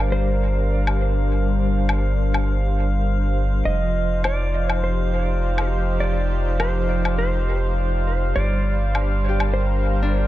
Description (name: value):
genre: ambient dub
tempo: 102 BPM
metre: 4/4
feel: swing 54% on 16ths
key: G minor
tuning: A4 = 440 Hz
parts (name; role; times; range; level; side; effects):
- clean lap steel guitar; melody; 0.0-10.3 s; C5 to Eb5; -28 LUFS; equal; dub echo
- warm analog pad; sustained chords; 0.0-10.3 s; F3 to F5; -26 LUFS; equal; chorus, tremolo
- soft dub sub bass; bass; 0.0-10.3 s; F1 to G1; -21 LUFS; equal; none
- drifting glass-harmonics texture; texture; 0.0-10.3 s; F5; -32 LUFS; equal; chorus, built-in reverb
- woodblock; drums; 0.9-9.5 s; none; -28 LUFS; left 2 dB; dub echo
- Celtic harp; arpeggios; 9.3-10.3 s; D4 to G4; -29 LUFS; left 4 dB; dub echo
room: light reverb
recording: none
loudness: -19 LUFS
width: side -15 dB against mid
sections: 0.0-10.3 A section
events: none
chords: 0.0 Gm7; 3.7 F5; 8.4 Gm7